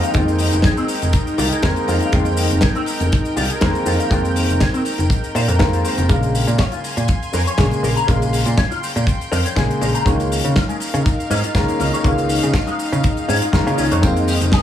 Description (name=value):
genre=nu-disco, nu disco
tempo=121 BPM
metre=4/4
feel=swing 54% on 16ths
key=F minor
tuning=A4 = 439 Hz
part: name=warm baby grand piano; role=accompaniment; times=0.0-14.6 s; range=Db3 to G5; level=-22 LUFS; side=equal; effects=sidechain pumping, dub echo
part: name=lush unison pad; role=sustained chords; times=0.0-14.6 s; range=Ab3 to C6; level=-25 LUFS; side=equal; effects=chorus, sidechain pumping
part: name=electric guitar with an envelope filter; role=riff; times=0.0-14.6 s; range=Ab3 to Bb5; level=-26 LUFS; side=left 3 dB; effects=ensemble chorus, dub echo
part: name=damped 70s drum kit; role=drums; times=0.0-14.6 s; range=hi-hat, shaker, snare drum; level=-25 LUFS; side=left 2 dB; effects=none
part: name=picked electric bass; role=bass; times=0.1-14.5 s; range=F1 to Db3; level=-19 LUFS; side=equal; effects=none
part: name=kick drum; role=drums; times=0.1-14.6 s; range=none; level=-18 LUFS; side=equal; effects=none
part: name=swell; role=sound effects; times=13.2-14.0 s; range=none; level=-29 LUFS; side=left 1 dB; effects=none
part: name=tambourine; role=percussion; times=14.0-14.6 s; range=none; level=-33 LUFS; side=right 1 dB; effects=none
room=small room ambience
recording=none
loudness=-15 LUFS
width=side -10 dB against mid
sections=0.0-14.6 A section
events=swell 13.2-14.0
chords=0.0 Fm11; 6.1 Bbm9; 10.1 Db69; 14.0 Fm11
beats=| 0.14 0.64 1.14 1.63 | 2.13 2.62 3.12 3.62 | 4.11 4.61 5.10 5.60 | 6.09 6.59 7.09 7.58 | 8.08 8.57 9.07 9.57 | 10.06 10.56 11.05 11.55 | 12.05 12.54 13.04 13.53 | 14.03 14.53